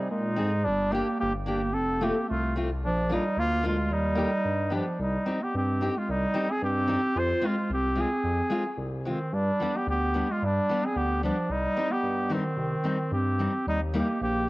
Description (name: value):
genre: alpine folk, alpine dance band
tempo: 111 BPM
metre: 2/4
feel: rubato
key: C harmonic minor from 5.0 s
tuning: A4 = 439 Hz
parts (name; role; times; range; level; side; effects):
- clear flugelhorn; melody; 0.0-14.5 s; C4 to C5; -30 LUFS; equal; cassette tape
- mellow clarinet; second line; 0.0-14.5 s; Eb3 to F4; -29 LUFS; right 1 dB; none
- smooth synth bass; bass; 0.0-14.5 s; F1 to Bb2; -31 LUFS; equal; none
- fingerpicked steel-string acoustic guitar; accompaniment; 0.4-14.1 s; G3 to Ab4; -32 LUFS; left 2 dB; none
room: light reverb, small room ambience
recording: home recording on cassette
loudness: -25 LUFS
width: side -20 dB against mid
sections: 0.0-5.0 A section; 5.0-13.7 B section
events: none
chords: 0.0 Ab; 0.7 Gm; 1.8 F; 2.8 Bb; 3.9 Eb; 4.4 G7; 5.0 Cm; 7.2 Fm; 9.3 G; 11.5 Cm; 13.7 Eb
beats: 0.12 | 0.67 1.21 | 1.76 2.30 | 2.83 3.37 | 3.90 4.45 | 4.99 5.54 | 6.08 6.61 | 7.15 7.69 | 8.23 8.77 | 9.32 9.87 | 10.42 10.96 | 11.49 12.03 | 12.57 13.12 | 13.67 14.21